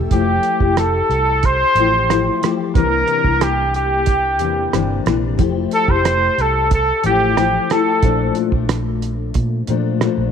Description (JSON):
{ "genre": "indie pop, bedroom pop", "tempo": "91 BPM", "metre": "4/4", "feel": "straight", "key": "F major", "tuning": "A4 = 442 Hz", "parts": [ { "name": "fingerpicked steel-string acoustic guitar", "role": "accompaniment", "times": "0.0-10.3 s", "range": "Bb2 to G4", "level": "-20 LUFS", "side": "left 10 dB", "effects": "ensemble chorus, vibrato effect" }, { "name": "vintage muted fingered electric bass", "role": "bass", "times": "0.0-10.3 s", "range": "F1 to Bb2", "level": "-21 LUFS", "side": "right 1 dB", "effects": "none" }, { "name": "warm trumpet", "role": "melody", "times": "0.1-8.4 s", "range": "G4 to C5", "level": "-17 LUFS", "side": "equal", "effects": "analog chorus, slapback echo" }, { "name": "cloth-damped thuddy drum kit", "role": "drums", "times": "0.1-10.2 s", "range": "hi-hat, kick drum, rim click", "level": "-19 LUFS", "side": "right 4 dB", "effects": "none" } ], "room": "light reverb, small room ambience", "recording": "1960s-style stereo", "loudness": "-14 LUFS", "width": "side -7 dB against mid", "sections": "0.1-10.3 A section", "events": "none", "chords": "0.1 Fmaj9; 2.7 C9; 5.4 Fmaj9; 8.0 Bbmaj7" }